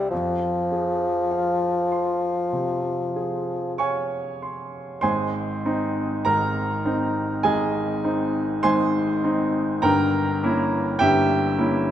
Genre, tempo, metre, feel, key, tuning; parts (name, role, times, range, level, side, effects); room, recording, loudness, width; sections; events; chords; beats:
classical, romantic duo for bassoon and grand piano; 50 BPM; 4/4; rubato; F minor, Ab major from 5.0 s; A4 = 440 Hz
warm bassoon; melody; 0.0-3.7 s; F3; -23 LUFS; left 2 dB
clear grand piano; accompaniment; 0.0-11.9 s; G1 to Db6; -22 LUFS; equal
moderate recital hall reverb, RT60 1.6 s; -21 LUFS; side -11 dB against mid
0.0-5.0 A section; 5.0-11.9 B section
0.1 Fm; 5.0 Ab; 9.8 Gdim7
| 0.11 1.30 2.51 3.79 | 5.02 6.24 7.45 8.64 | 9.84 11.01